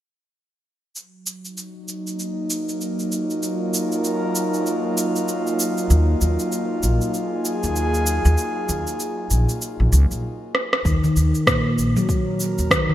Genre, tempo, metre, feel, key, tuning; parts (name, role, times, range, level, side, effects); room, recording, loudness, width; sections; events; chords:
organic downtempo; 97 BPM; 4/4; swing 59% on 16ths; Eb minor; A4 = 440 Hz
airy breathy pad; sustained chords; 1.0-12.9 s; Gb3 to Bb4; -24 LUFS; equal; chorus, sidechain pumping
electronic cabasa and rim click; drums; 1.0-12.9 s; -24 LUFS; right 1 dB; overdrive, gated reverb
upright bass; bass; 5.9-12.9 s; Bb1 to Eb2; -19 LUFS; equal; sidechain pumping
handpan; arpeggios; 10.9-12.9 s; Bb2 to Gb3; -20 LUFS; left 1 dB; digital delay
electronic kick drum; drums; 10.9-12.9 s; -23 LUFS; equal
light reverb, digital ambience; bright 1980s-style digital production; -19 LUFS; side -13 dB against mid
1.0-10.9 A section; 10.9-12.9 B section
filter sweep on analog synth pad 1.0-10.9; stop 10.2-10.9; drum fill 10.5-10.9
1.0 Ebmadd9; 10.9 Eb5